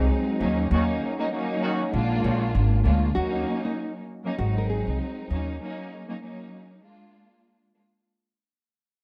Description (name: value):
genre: hip hop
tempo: 98 BPM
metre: 4/4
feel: swing 57% on 16ths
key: Eb dorian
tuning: A4 = 440 Hz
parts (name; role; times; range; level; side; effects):
- nylon-string guitar; melody; 0.0-5.0 s; Eb4 to Bb4; -35 LUFS; equal; high-pass filter, low-pass filter, analog delay
- warm studio string section; accompaniment; 0.0-8.0 s; Gb3 to F4; -30 LUFS; equal; high-pass filter, low-pass filter
- dark analog pad; sustained chords; 0.1-3.1 s; D4 to Ab5; -38 LUFS; equal; chorus, phaser, high-pass filter, low-pass filter
- upright bass; bass; 0.0-5.6 s; Ab1 to Eb2; -26 LUFS; equal; none
- clear horn section; stabs; 0.7-1.8 s; Eb3 to Gb4; -38 LUFS; equal; high-pass filter, low-pass filter, analog delay
room: moderate small room reverb, RT60 0.5 s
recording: dark, warm production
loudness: -25 LUFS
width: mono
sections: 0.0-3.2 A section; 3.2-8.1 B section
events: fade-out 3.2-8.1; break 5.6-8.1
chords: 0.4 Ebm7; 1.9 Bb7; 3.2 Ebm7; 4.4 Ab7; 5.3 Ebm7; 6.8 Bb7